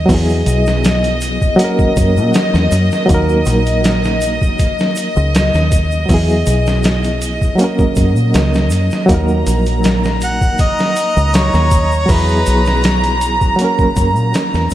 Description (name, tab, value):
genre	trip hop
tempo	80 BPM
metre	4/4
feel	straight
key	Eb phrygian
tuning	A4 = 441 Hz
part	barky reed electric piano	accompaniment	0.0-14.7 s	F#3 to Bb4	-17 LUFS	right 1 dB	overdrive, fast tremolo, vintage 12-bit sampler grit, tape echo
part	rich studio violin section	sustained chords	0.0-14.7 s	Eb5 to Bb5	-20 LUFS	left 1 dB	none
part	deep dub fingered electric bass	bass	0.0-14.7 s	Bb1 to Bb2	-15 LUFS	equal	tube saturation
part	boom bap sampler-style drum kit	drums	0.1-14.7 s	hi-hat, kick drum, snare drum	-17 LUFS	equal	none
part	egg shaker	percussion	0.1-14.7 s	none	-34 LUFS	right 2 dB	none
part	clear harmonica	melody	10.2-12.9 s	B4 to Gb5	-19 LUFS	equal	vintage 12-bit sampler grit, dub echo
room	moderate huge ambient reverb, RT60 4.5 s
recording	dreamy mix soaked in reverb, vinyl crackle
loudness	-11 LUFS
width	side -13 dB against mid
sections	0.0-14.7 A section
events	fade-out 13.1-14.7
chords	0.1 Eadd9; 1.6 Gb; 3.1 Ebm; 6.1 Eadd9; 7.6 Gb; 9.1 Ebm; 12.1 Eadd9; 13.6 Gb